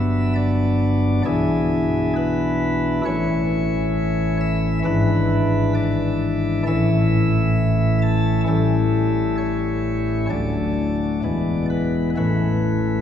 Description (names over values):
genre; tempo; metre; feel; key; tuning
classical, chorale-style piece for pipe organ; 66 BPM; 4/4; straight; A major; A4 = 440 Hz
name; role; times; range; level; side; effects
chamber organ, sparkling flutes; solo; 0.0-13.0 s; D1 to A5; -18 LUFS; left 1 dB; none
room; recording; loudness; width
wet church reverb, RT60 3.2 s; heard from further back in the room, small room ambience; -18 LUFS; side -9 dB against mid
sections
0.0-13.0 A section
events
none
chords
0.0 Gmaj7; 1.3 E7/B; 3.1 A; 4.9 E7/G#; 6.7 A; 8.5 A7; 10.3 D; 11.2 E; 12.2 A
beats
0.36 | 1.26 2.16 3.06 3.96 | 4.86 5.76 6.67 7.58 | 8.48 9.38 10.30 11.23 | 12.16